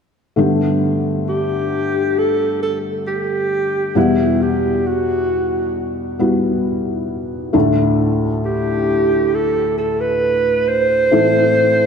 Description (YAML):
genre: pop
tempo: 67 BPM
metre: 4/4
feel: straight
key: G major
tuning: A4 = 439 Hz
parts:
  - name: felt-muted upright piano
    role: accompaniment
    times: 0.4-11.9 s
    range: D2 to F#5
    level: -17 LUFS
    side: left 1 dB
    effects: none
  - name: mellow alto saxophone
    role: melody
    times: 1.3-11.9 s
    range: E4 to C5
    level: -17 LUFS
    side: right 1 dB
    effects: none
room: wet plate reverb, RT60 2.8 s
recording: dreamy mix soaked in reverb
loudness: -15 LUFS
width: side -6 dB against mid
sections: 0.4-11.9 A section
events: none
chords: 0.4 Gadd9; 4.0 Emadd9; 7.5 Dsus2; 11.1 Am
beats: | 0.38 1.27 2.17 3.06 | 3.96 4.86 5.75 6.65 | 7.54 8.44 9.33 10.23 | 11.12